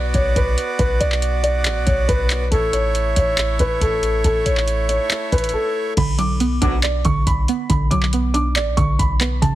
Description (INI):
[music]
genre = hip hop, trap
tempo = 139 BPM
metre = 4/4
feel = half-time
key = B minor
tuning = A4 = 441 Hz
[part]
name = dark concert grand piano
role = melody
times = 0.0-9.6 s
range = A4 to D6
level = -22 LUFS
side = equal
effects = digital delay
[part]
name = accordion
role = sustained chords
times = 0.0-5.9 s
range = A3 to D5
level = -25 LUFS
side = right 3 dB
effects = none
[part]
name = clean 808-style bass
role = bass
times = 0.0-9.6 s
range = A1 to B1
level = -21 LUFS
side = equal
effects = none
[part]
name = booming analog drum machine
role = drums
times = 0.1-9.6 s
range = crash cymbal, handclaps, hi-hat, kick drum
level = -21 LUFS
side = equal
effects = none
[part]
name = soft round pluck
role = accompaniment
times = 6.0-9.6 s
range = C#3 to D5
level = -21 LUFS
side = right 4 dB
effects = chorus
[part]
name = mellow brass ensemble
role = stabs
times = 6.6-6.8 s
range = D2 to F#3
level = -28 LUFS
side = left 1 dB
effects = none
[sound]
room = light reverb, studio ambience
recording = heavily compressed radio sound, multiband compression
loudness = -16 LUFS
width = side -14 dB against mid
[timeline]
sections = 0.0-6.0 A section; 6.0-9.6 B section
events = break 5.5-6.0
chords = 0.0 Bm; 2.5 A; 6.0 Bm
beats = 0.36 | 0.79 1.22 1.65 2.09 | 2.52 2.95 3.38 3.81 | 4.24 4.68 5.11 5.54 | 5.97 6.40 6.83 7.27 | 7.70 8.13 8.56 8.99 | 9.42